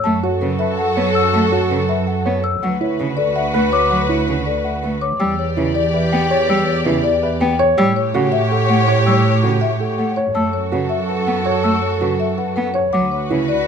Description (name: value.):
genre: classical, minimalist pattern music.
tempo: 326 BPM (eighths).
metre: 7/8.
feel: straight.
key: E dorian.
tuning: A4 = 440 Hz.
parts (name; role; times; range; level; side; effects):
marimba with medium mallets; melody; 0.0-13.7 s; A4 to A5; -23 LUFS; left 9 dB; none.
rich cello; accompaniment; 0.0-13.4 s; C#3 to B3; -22 LUFS; right 1 dB; none.
rich symphonic string section; sustained chords; 0.0-13.7 s; F#4 to D5; -24 LUFS; left 1 dB; none.
celesta; arpeggios; 0.0-13.2 s; F#5 to E6; -23 LUFS; left 4 dB; none.
rich symphonic double bass section; bass; 0.0-13.7 s; D2 to A2; -21 LUFS; right 3 dB; none.
warm clarinet; second line; 0.1-13.7 s; F#4 to B4; -27 LUFS; right 3 dB; none.
dark baby grand piano; arpeggios; 0.2-13.5 s; E4 to C#5; -22 LUFS; right 5 dB; none.
room: light reverb.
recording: none.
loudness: -15 LUFS.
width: side -7 dB against mid.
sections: 0.0-5.2 A section; 5.2-13.7 A section.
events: none.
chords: 0.0 F#m7; 2.6 D69; 5.2 Em7; 7.8 A7; 10.4 F#m7; 12.9 D69.